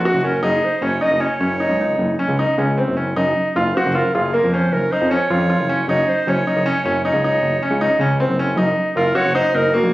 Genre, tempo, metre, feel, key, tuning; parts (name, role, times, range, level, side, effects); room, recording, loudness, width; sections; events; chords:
contemporary instrumental, chamber music in an uneven meter; 155 BPM; 7/4; straight; Gb lydian; A4 = 440 Hz
warm clarinet; melody; 0.0-9.9 s; F4 to Eb5; -21 LUFS; right 2 dB
fat analog bass; bass; 0.0-9.9 s; Gb1 to F2; -21 LUFS; equal
bright concert grand piano; arpeggios; 0.1-9.9 s; Bb3 to Gb4; -18 LUFS; equal
light reverb; recorded on a phone in the room, club reverb, compression; -16 LUFS; side -17 dB against mid
0.0-9.9 A section
0.4 Gb5; 3.2 Bbm/Gb; 5.9 Gb5; 8.6 Ebm/Gb